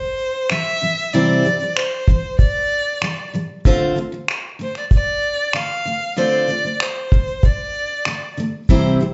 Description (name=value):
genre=acoustic pop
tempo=95 BPM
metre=4/4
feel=straight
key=D minor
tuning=A4 = 440 Hz
part: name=warm violin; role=melody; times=0.0-8.4 s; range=C5 to F5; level=-24 LUFS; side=equal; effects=none
part: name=cloth-damped thuddy drum kit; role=drums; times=0.2-9.1 s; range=finger snaps, kick drum, shaker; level=-20 LUFS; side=equal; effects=none
part: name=picked steel-string acoustic guitar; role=accompaniment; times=0.5-9.1 s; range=C3 to C5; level=-22 LUFS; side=equal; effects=none
room=moderate large studio reverb, RT60 0.9 s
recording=band playing live in one room, nothing above 7.8 kHz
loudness=-19 LUFS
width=mono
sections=0.0-9.1 A section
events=none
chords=0.0 C; 3.7 Dm7